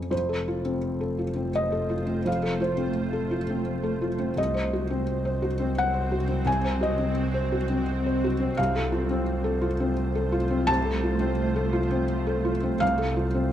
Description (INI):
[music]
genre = neoclassical piano and strings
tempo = 85 BPM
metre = 3/4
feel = rubato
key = unclear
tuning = A4 = 439 Hz
[part]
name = felt-muted upright piano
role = accompaniment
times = 0.0-13.5 s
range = C2 to A5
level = -26 LUFS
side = left 1 dB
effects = none
[part]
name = granular cloud pad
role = sustained chords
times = 1.2-13.5 s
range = A3 to C5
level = -32 LUFS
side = right 3 dB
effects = built-in reverb
[part]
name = rich double bass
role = bass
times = 0.1-13.5 s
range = F1 to C2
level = -29 LUFS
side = equal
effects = none
[sound]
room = light reverb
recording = close, detailed microphones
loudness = -24 LUFS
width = side -11 dB against mid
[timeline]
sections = 0.1-13.5 A section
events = none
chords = 0.1 F; 4.4 Cdim; 8.6 F/C